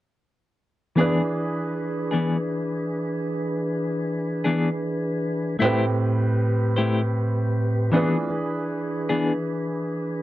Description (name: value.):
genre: blues.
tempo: 52 BPM (dotted quarters).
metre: 12/8.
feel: straight.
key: unclear.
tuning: A4 = 440 Hz.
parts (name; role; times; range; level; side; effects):
bright upright piano; accompaniment; 1.0-10.2 s; A2 to B4; -28 LUFS; right 3 dB; none.
clean electric guitar; accompaniment; 1.0-9.3 s; E3 to C5; -22 LUFS; left 3 dB; tremolo.
mellow tonewheel organ; sustained chords; 1.0-10.2 s; A2 to B4; -24 LUFS; equal; slow rotary speaker.
room: wet club reverb, RT60 0.6 s.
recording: dark, warm production.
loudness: -22 LUFS.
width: side -15 dB against mid.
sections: 1.0-10.2 A section.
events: none.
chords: 1.0 E7; 5.6 Am7; 7.9 E7.